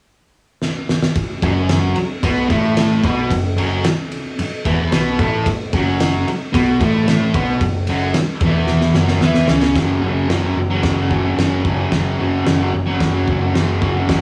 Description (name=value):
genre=garage rock duo or trio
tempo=111 BPM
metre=4/4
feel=straight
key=unclear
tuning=A4 = 440 Hz
part: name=oversized low-tuned drum kit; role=drums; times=0.6-14.2 s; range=crash cymbal, kick drum, ride cymbal, snare drum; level=-23 LUFS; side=equal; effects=cassette tape
part: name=fuzz guitar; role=riff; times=1.4-14.2 s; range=E2 to E4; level=-20 LUFS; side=equal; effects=distortion, cassette tape
part: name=growling picked electric bass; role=bass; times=1.4-14.2 s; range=E1 to E2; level=-23 LUFS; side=equal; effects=overdrive, tube saturation
room=light reverb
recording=home recording on cassette, small room ambience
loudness=-17 LUFS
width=mono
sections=0.0-1.2 A section; 1.2-9.8 B section; 9.8-14.2 C section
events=drum fill 0.6-1.2, 8.7-9.8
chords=0.0 N.C.; 1.2 F#5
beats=0.08 0.62 | 1.16 1.70 2.24 2.78 | 3.32 3.85 4.39 4.93 | 5.47 6.01 6.54 7.08 | 7.62 8.16 8.69 9.23 | 9.77 10.31 10.85 11.39 | 11.93 12.47 13.01 13.55 | 14.09